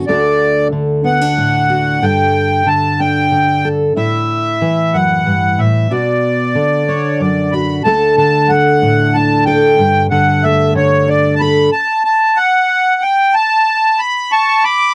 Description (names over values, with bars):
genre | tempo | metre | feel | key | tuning
folk | 62 BPM (dotted quarters) | 6/8 | straight | D major | A4 = 440 Hz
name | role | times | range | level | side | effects
fingerpicked steel-string acoustic guitar | accompaniment | 0.0-11.7 s | D2 to A4 | -16 LUFS | equal | none
accordion | melody | 0.1-14.9 s | C#5 to D6 | -16 LUFS | equal | none
room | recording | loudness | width
light reverb | dry, close 1970s-style studio recording | -13 LUFS | mono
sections
0.0-7.9 A section; 7.9-14.9 B section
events
none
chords
0.1 D; 2.0 Gsus2; 4.0 A5; 5.9 Bm; 7.9 D; 9.8 Gsus2; 11.7 N.C.